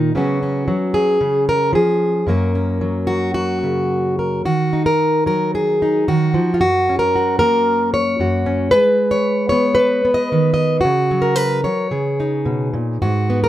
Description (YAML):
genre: folk, solo fingerstyle acoustic guitar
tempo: 112 BPM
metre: 4/4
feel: rubato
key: F# major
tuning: A4 = 440 Hz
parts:
  - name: fingerpicked plugged-in steel-string acoustic guitar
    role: solo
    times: 0.0-13.5 s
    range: F#2 to D#5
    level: -15 LUFS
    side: equal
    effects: none
room: light reverb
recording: none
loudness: -15 LUFS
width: side -13 dB against mid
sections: 0.0-4.5 A section; 4.5-13.5 B section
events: none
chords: 0.2 C#7sus4; 1.2 C#; 2.3 F#; 4.5 D#madd9; 6.6 F#; 8.7 G#m; 10.8 C#sus4; 11.9 C#sus2